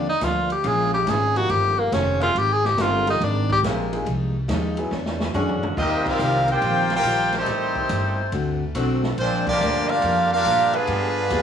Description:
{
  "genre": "jazz, big band swing",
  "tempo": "141 BPM",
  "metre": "4/4",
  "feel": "swing 67% on 8ths",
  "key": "Eb major",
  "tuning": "A4 = 441 Hz",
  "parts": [
    { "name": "bright tenor saxophone", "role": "melody", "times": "0.0-3.6 s", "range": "Bb3 to Ab4", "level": "-20 LUFS", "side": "equal", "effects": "cassette tape" },
    { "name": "picked plugged-in steel-string acoustic guitar", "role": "accompaniment", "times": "0.0-11.4 s", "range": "G2 to C#5", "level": "-29 LUFS", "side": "left 4 dB", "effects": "cassette tape" },
    { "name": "warm concert grand piano", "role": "accompaniment", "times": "0.0-4.9 s", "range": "F3 to Ab4", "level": "-29 LUFS", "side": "right 1 dB", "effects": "cassette tape" },
    { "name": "upright bass", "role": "bass", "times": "0.0-11.4 s", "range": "F1 to Bb2", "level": "-26 LUFS", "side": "right 1 dB", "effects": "none" },
    { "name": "swinging big-band drum kit", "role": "drums", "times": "0.2-11.4 s", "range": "crash cymbal, hi-hat, kick drum, ride cymbal, snare drum, toms", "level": "-31 LUFS", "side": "equal", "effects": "none" },
    { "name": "bright saxophone section", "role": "sustained chords", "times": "0.6-11.1 s", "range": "C3 to Bb4", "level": "-28 LUFS", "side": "equal", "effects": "cassette tape" },
    { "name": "brilliant trumpet section", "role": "melody", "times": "5.8-11.4 s", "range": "Ab3 to G5", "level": "-21 LUFS", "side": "equal", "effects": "cassette tape" },
    { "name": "muted trombone section", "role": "second line", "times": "5.8-11.4 s", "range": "D3 to G4", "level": "-27 LUFS", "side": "right 4 dB", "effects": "cassette tape" }
  ],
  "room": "moderate booth ambience, RT60 0.2 s",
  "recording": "home recording on cassette, studio ambience",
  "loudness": "-19 LUFS",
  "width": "side -8 dB against mid",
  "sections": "0.0-5.8 A section; 5.8-11.4 B section",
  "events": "tenor saxophone solo 0.0-5.8; drum fill 4.9-5.8; band accent 6.0, 9.4",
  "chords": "0.0 Gm7; 0.6 Bbm7; 1.5 Eb13; 2.4 Abmaj9; 4.1 Fm9; 4.9 E13; 5.8 Eb69; 7.5 Am7b5; 8.3 D7; 9.2 Gm7; 10.9 G7b9",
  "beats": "0.22 | 0.65 1.07 1.50 1.93 | 2.36 2.78 3.21 3.64 | 4.06 4.49 4.92 5.34 | 5.77 6.20 6.62 7.05 | 7.48 7.90 8.33 8.76 | 9.18 9.61 10.04 10.46 | 10.89 11.31"
}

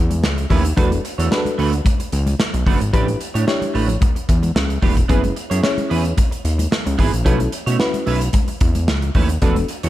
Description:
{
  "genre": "early-eighties boogie funk",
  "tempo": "111 BPM",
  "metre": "4/4",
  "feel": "straight",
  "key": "unclear",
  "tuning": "A4 = 440 Hz",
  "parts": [
    { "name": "fat analog bass", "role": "bass", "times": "0.0-9.9 s", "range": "E1 to B2", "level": "-19 LUFS", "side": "equal", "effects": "none" },
    { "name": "clean electric guitar", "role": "riff", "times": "0.1-9.9 s", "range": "A3 to C#5", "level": "-25 LUFS", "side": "right 8 dB", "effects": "analog chorus" },
    { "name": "modern studio drum kit", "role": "drums", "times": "0.1-9.9 s", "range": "hi-hat, kick drum, snare drum", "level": "-19 LUFS", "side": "equal", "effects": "none" },
    { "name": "congas", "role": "percussion", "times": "0.1-9.7 s", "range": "none", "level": "-28 LUFS", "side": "left 3 dB", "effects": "none" },
    { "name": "FM electric piano with auto-pan", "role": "accompaniment", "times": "0.8-9.7 s", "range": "B3 to C#5", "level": "-23 LUFS", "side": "left 2 dB", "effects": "none" }
  ],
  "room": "small room ambience",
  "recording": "none",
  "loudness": "-16 LUFS",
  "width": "side -14 dB against mid",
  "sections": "0.0-9.9 A section",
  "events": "none",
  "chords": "0.0 B9sus4; 0.8 E9sus4; 2.9 A9sus4; 5.1 F#9sus4; 7.3 B9sus4",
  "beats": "0.23 | 0.77 1.31 1.85 2.40 | 2.94 3.48 4.02 4.56 | 5.10 5.64 6.18 6.72 | 7.26 7.80 8.34 8.88 | 9.42"
}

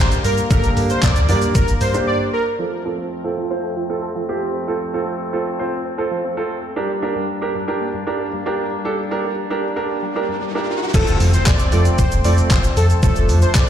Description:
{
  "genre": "dance-pop",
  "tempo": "115 BPM",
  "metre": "4/4",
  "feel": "straight",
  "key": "unclear",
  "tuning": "A4 = 440 Hz",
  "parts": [
    { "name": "soft supersaw", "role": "melody", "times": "0.0-2.4, 10.9-13.7 s", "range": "A4 to D5", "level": "-22 LUFS", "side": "equal", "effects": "sidechain pumping, ping-pong delay" },
    { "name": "warm concert grand piano", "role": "accompaniment", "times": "0.0-13.4 s", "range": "A3 to C5", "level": "-23 LUFS", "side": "right 3 dB", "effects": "sidechain pumping, low-pass filter" },
    { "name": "warm brass ensemble", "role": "sustained chords", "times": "0.0-13.7 s", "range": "F2 to D4", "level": "-27 LUFS", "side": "left 2 dB", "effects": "sidechain pumping, low-pass filter" },
    { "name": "sub bass with octave", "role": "bass", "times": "0.0-2.0, 10.9-13.7 s", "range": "F1 to G2", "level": "-17 LUFS", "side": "equal", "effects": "sidechain pumping" },
    { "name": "gated 80s digital drum machine", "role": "drums", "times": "0.1-2.1, 10.9-13.7 s", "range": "crash cymbal, handclaps, hi-hat, kick drum, shaker", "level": "-18 LUFS", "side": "equal", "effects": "gated reverb, overdrive" },
    { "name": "egg shaker", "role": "percussion", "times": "0.1-2.1, 10.9-13.7 s", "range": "none", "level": "-39 LUFS", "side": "left 10 dB", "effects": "none" },
    { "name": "tight sequenced synth", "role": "arpeggios", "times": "2.6-10.7 s", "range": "G2 to A4", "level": "-32 LUFS", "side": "equal", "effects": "chorus, sidechain pumping, low-pass filter, ping-pong delay" },
    { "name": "riser and impact", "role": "sound effects", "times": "9.9-13.0 s", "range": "none", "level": "-27 LUFS", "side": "equal", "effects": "none" }
  ],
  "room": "moderate lush hall reverb, RT60 2.3 s",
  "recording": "played on a big sound system in a bare room, large studio reverb",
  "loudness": "-16 LUFS",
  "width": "side -9 dB against mid",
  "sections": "0.0-2.6 A section; 2.6-10.9 B section; 10.9-13.7 A section",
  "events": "drop 0.0-2.6, 10.9-13.7; break 2.1-2.6; filter sweep 2.6-10.9; riser 9.9-10.9; impact 10.9-13.0",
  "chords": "0.0 Gm; 2.6 F; 6.8 Gm; 10.9 F",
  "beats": "| 0.51 1.03 1.55 2.07 | 2.59 3.11 3.64 4.16 | 4.68 5.20 5.72 6.24 | 6.77 7.29 7.81 8.33 | 8.85 9.38 9.90 10.42 | 10.94 11.46 11.98 12.51 | 13.03 13.55"
}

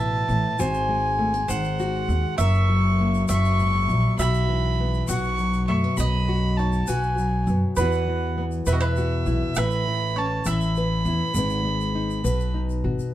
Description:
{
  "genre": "acoustic folk duo or small band",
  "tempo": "67 BPM (dotted quarters)",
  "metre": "6/8",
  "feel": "straight",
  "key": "unclear",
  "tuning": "A4 = 442 Hz",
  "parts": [
    { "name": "warm fiddle", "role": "melody", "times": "0.0-12.6 s", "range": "D#5 to C#6", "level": "-27 LUFS", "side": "right 1 dB", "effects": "plate reverb" },
    { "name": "bowl-back mandolin", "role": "second line", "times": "0.0-11.4 s", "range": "F#4 to F#5", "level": "-31 LUFS", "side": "right 4 dB", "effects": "none" },
    { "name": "nylon-string guitar", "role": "accompaniment", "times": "0.0-13.1 s", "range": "E2 to B4", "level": "-26 LUFS", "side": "left 3 dB", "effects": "none" },
    { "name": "upright bass", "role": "bass", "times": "0.0-13.0 s", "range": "F#1 to F#2", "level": "-24 LUFS", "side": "equal", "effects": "none" },
    { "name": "tube shaker", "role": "percussion", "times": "0.3-13.1 s", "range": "none", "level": "-38 LUFS", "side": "left 6 dB", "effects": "none" }
  ],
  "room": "moderate studio reverb, RT60 0.5 s",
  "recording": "dark, warm production",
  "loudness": "-20 LUFS",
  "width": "side -13 dB against mid",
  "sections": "0.0-13.1 A section",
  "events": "none",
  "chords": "0.0 Asus2; 0.6 G#7; 2.4 F#7; 4.2 Bsus4; 5.1 B; 7.8 Esus2; 9.6 Aadd9; 11.4 G#m; 12.2 B",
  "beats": "| 0.59 1.49 | 2.39 3.29 | 4.18 5.08 | 5.98 6.88 | 7.77 8.67 | 9.56 10.46 | 11.35 12.25"
}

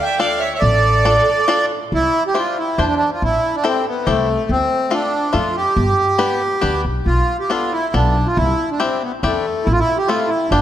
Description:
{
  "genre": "musette waltz",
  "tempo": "140 BPM",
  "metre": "3/4",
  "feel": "rubato",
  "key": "C major",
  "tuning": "A4 = 440 Hz",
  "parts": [
    { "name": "accordion", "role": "melody", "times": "0.0-10.6 s", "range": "A3 to G5", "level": "-17 LUFS", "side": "right 1 dB", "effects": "none" },
    { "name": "bright violin", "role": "second line", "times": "0.0-1.7 s", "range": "A4 to E5", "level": "-24 LUFS", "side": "right 5 dB", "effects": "none" },
    { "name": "bluegrass banjo", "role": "accompaniment", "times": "0.2-10.6 s", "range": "A3 to D5", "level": "-23 LUFS", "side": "left 4 dB", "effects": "none" },
    { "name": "upright bass", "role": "bass", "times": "0.6-10.6 s", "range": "G1 to F2", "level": "-20 LUFS", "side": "equal", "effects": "none" }
  ],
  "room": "moderate concert hall reverb, RT60 2.5 s",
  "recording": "none",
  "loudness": "-15 LUFS",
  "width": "side -11 dB against mid",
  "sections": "0.0-1.9 A section; 1.9-10.6 B section",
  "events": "none",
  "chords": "0.0 Dm; 1.9 Cadd9; 3.2 Am7; 4.5 Dm; 5.8 G; 7.1 Bm7b5; 8.4 Cadd9; 9.7 Am",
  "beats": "0.20 | 0.62 1.05 1.49 | 1.92 2.35 2.78 | 3.21 3.64 4.06 | 4.49 4.91 5.34 | 5.76 6.19 6.63 | 7.07 7.50 7.94 | 8.37 8.80 9.23 | 9.65 10.08 10.51"
}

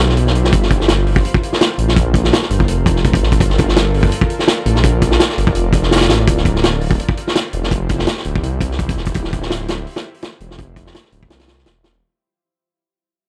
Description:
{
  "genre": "drum and bass, jungle",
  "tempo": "167 BPM",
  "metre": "4/4",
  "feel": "swing 54% on 16ths",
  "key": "unclear",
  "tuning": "A4 = 439 Hz",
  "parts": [
    { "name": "granular cloud pad", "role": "sustained chords", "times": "0.1-12.0 s", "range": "E4 to D5", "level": "-29 LUFS", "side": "equal", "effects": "built-in reverb, vintage 12-bit sampler grit" },
    { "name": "detuned saw bass", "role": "bass", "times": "0.0-12.0 s", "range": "D1 to C2", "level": "-19 LUFS", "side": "equal", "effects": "none" },
    { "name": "vintage drum kit", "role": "drums", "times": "0.1-11.9 s", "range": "hi-hat, kick drum, snare drum", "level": "-17 LUFS", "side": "equal", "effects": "none" }
  ],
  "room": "studio reverb",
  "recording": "dry, gritty hardware recording, transformer saturation, cassette tape",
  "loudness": "-15 LUFS",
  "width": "mono",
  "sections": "0.0-12.0 A section",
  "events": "break 0.0-0.5; drop 0.0-12.0; fade-out 6.3-12.0",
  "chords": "0.0 Dm11 (rootless); 0.5 Gm11; 6.3 Dm11",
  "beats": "0.17 | 0.53 0.88 1.24 1.60 | 1.96 2.32 2.68 3.04 | 3.40 3.76 4.12 4.48 | 4.84 5.20 5.55 5.91 | 6.27 6.63 6.99 7.35 | 7.71 8.07 8.43 8.79 | 9.15 9.51 9.87 10.22 | 10.59 10.94 11.30 11.66"
}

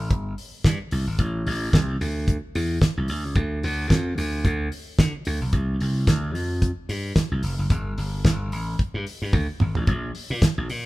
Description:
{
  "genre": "disco",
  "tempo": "110 BPM",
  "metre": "4/4",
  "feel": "swing 56% on 16ths",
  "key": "unclear",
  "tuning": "A4 = 444 Hz",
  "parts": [
    { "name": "slap bass", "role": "bass", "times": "0.0-10.9 s", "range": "F1 to D3", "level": "-25 LUFS", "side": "equal", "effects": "none" },
    { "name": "damped 70s drum kit", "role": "drums", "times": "0.1-10.8 s", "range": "hi-hat, kick drum, snare drum, toms", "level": "-22 LUFS", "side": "equal", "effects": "none" }
  ],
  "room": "light reverb",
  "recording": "band playing live in one room",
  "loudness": "-21 LUFS",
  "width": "side -19 dB against mid",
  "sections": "0.0-9.9 A section",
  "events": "drum fill 9.3-9.9",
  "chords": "none",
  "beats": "0.10 0.65 | 1.19 1.73 2.27 2.82 | 3.36 3.90 4.45 4.99 | 5.53 6.07 6.62 7.16 | 7.70 8.24 8.79 9.33 | 9.87 10.42"
}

